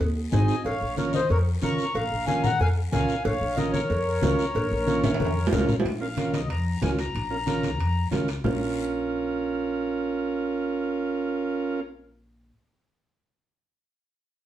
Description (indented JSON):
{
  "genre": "latin, cumbia",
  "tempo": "185 BPM",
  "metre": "4/4",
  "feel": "straight",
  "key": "Bb minor",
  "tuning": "A4 = 440 Hz",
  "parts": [
    { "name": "upright bass", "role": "bass", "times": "0.0-12.5 s", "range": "Ab1 to F2", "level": "-28 LUFS", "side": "left 1 dB", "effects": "none" },
    { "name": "cowbell and timbales", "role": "percussion", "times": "0.0-8.5 s", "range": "none", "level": "-31 LUFS", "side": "right 2 dB", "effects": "none" },
    { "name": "guiro", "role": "percussion", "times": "0.0-8.5 s", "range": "none", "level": "-43 LUFS", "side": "left 7 dB", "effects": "none" },
    { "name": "accordion", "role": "melody", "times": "0.3-8.1 s", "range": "Bb4 to Db6", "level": "-28 LUFS", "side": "left 2 dB", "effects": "plate reverb" },
    { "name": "combo organ", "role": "accompaniment", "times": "0.3-11.8 s", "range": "C4 to Bb4", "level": "-28 LUFS", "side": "right 3 dB", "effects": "none" },
    { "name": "congas", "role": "percussion", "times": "0.3-8.5 s", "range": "none", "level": "-29 LUFS", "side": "left 2 dB", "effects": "none" }
  ],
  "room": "wet studio reverb, RT60 0.6 s",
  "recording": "heard from further back in the room",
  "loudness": "-23 LUFS",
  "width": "side -12 dB against mid",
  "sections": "0.0-5.8 A section; 5.8-8.4 B section; 8.4-11.0 C section",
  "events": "drum fill 5.0-5.8",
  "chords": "0.0 Ab; 0.7 Bbm",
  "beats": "0.00 0.33 | 0.65 0.98 1.30 1.63 | 1.95 2.27 2.60 2.92 | 3.25 3.57 3.90 4.22 | 4.55 4.87 5.20 5.52 | 5.84 6.17 6.50 6.82 | 7.14 7.47 7.79 8.12 | 8.45 8.77 9.10 9.42 | 9.75 10.07 10.40 10.72"
}